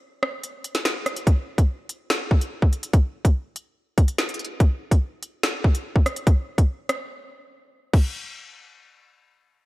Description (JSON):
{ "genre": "hip hop", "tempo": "144 BPM", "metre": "4/4", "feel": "half-time", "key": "none", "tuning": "none", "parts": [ { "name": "drill drum kit", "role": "drums", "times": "0.2-8.0 s", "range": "crash cymbal, finger snaps, hi-hat, kick drum, rim click, snare drum", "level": "-19 LUFS", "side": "equal", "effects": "none" } ], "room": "digital ambience", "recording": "none", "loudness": "-20 LUFS", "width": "side -19 dB against mid", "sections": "0.0-1.3 A section; 1.3-7.9 B section; 7.9-9.6 C section", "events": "break 0.0-1.3, 7.1-7.9", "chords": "none" }